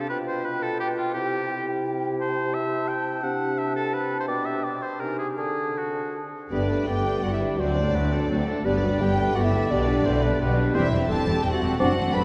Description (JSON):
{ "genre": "quick classical-period movement for symphony orchestra", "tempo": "171 BPM", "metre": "3/4", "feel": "rubato", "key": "G major", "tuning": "A4 = 437 Hz", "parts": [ { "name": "clear oboe", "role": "second line", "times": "0.0-11.9 s", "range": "F4 to G5", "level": "-33 LUFS", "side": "equal", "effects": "none" }, { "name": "mellow hollow concert flute", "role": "second line", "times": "0.0-12.2 s", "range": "D5 to B5", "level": "-34 LUFS", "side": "equal", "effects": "none" }, { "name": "warm clarinet", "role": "second line", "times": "0.0-12.2 s", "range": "D4 to B4", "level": "-34 LUFS", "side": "equal", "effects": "none" }, { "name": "dark bassoon", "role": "accompaniment", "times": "0.0-11.9 s", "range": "B2 to C4", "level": "-32 LUFS", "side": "equal", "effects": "none" }, { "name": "rich studio violin section", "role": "melody", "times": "6.5-12.2 s", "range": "D5 to B5", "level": "-35 LUFS", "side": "equal", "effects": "none" }, { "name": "clear symphonic violin section", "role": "second line", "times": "6.5-12.2 s", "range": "B3 to B4", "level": "-35 LUFS", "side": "equal", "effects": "none" }, { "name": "rich studio viola section", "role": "accompaniment", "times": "6.5-12.2 s", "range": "D3 to D4", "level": "-33 LUFS", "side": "equal", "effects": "none" }, { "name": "warm French horn section", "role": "sustained chords", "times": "6.5-11.9 s", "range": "B3 to G4", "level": "-36 LUFS", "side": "equal", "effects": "none" }, { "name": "rich studio cello section", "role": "bass", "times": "6.5-12.2 s", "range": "D2 to B2", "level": "-31 LUFS", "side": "equal", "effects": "none" }, { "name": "rich studio double bass section", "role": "bass", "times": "6.5-12.2 s", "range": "E1 to D2", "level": "-30 LUFS", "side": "equal", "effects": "none" } ], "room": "wet church reverb, RT60 3.6 s", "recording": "dark, warm production", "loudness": "-25 LUFS", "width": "mono", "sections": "0.0-6.5 A section; 6.5-12.2 B section", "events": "none", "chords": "0.1 G7/B; 1.1 C; 4.3 G/B; 5.0 Ab/C; 5.4 D; 6.5 G; 7.6 D7; 8.7 G; 9.7 G/B; 10.8 C/E" }